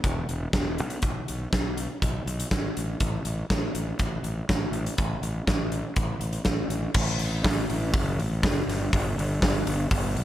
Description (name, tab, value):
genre	classic rock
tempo	122 BPM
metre	4/4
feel	straight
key	unclear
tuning	A4 = 441 Hz
part	fuzz fingered electric bass	bass	0.0-10.2 s	E1 to B1	-29 LUFS	equal	overdrive
part	big rock drum kit	drums	0.0-10.2 s	crash cymbal, hi-hat, kick drum, snare drum	-26 LUFS	equal	none
room	little or no reverb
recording	none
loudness	-24 LUFS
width	side -13 dB against mid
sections	0.0-6.9 A section; 6.9-10.2 B section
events	none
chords	none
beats	0.04 0.53 | 1.02 1.52 2.01 2.50 | 3.00 3.49 3.98 4.48 | 4.97 5.47 5.96 6.45 | 6.95 7.44 7.93 8.43 | 8.92 9.41 9.90